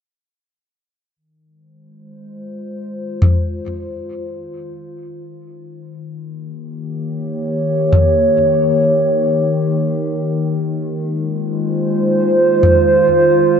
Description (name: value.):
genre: ambient dub.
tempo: free time.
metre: none.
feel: none.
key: F minor.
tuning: A4 = 440 Hz.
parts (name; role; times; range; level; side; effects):
warbly tape-like pad; sustained chords; 2.0-13.6 s; Eb3 to Db5; -16 LUFS; equal; chorus, built-in reverb.
electronic toms; drums; 3.2-3.4, 7.9-8.1, 12.6-12.8 s; none; -16 LUFS; left 1 dB; dub echo.
room: moderate echo chamber reverb, RT60 2.4 s.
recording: echo-heavy mix, nothing above 7.9 kHz.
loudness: -13 LUFS.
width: side -7 dB against mid.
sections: 1.2-13.6 A section.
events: fade-in on ambient pad 1.2-13.6.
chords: 1.2 Fm7; 5.9 Eb7; 10.6 Fm7.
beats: free time.